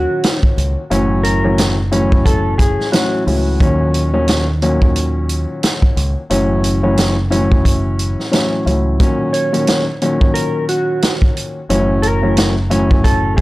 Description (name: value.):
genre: hip hop, boom-bap hip-hop.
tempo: 89 BPM.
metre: 4/4.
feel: swing 58% on 16ths.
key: Eb minor.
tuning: A4 = 437 Hz.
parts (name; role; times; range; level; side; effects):
mellow electric guitar; melody; 0.0-3.2, 9.3-13.4 s; Gb4 to Db5; -21 LUFS; equal; lush chorus, high-pass filter, low-pass filter, tape echo.
dark concert grand piano; accompaniment; 0.0-13.4 s; A2 to Db4; -17 LUFS; left 1 dB; high-pass filter, low-pass filter.
deep dub fingered electric bass; bass; 0.0-13.4 s; Gb1 to Eb2; -18 LUFS; equal; transformer saturation.
vintage drum kit; drums; 0.2-13.4 s; hi-hat, kick drum, snare drum; -16 LUFS; equal; none.
room: little or no reverb.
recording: dry, gritty hardware recording.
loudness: -13 LUFS.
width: side -19 dB against mid.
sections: 0.0-13.4 A section.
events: none.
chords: 0.0 Ebm7; 0.9 Gbm7; 3.6 Ebm7; 6.3 Gbm7; 9.0 Ebm7; 11.7 Gbm7.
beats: 0.23 | 0.91 1.58 2.25 2.93 | 3.60 4.28 4.95 5.63 | 6.30 6.97 7.65 8.32 | 9.00 9.67 10.35 11.02 | 11.69 12.37 13.04.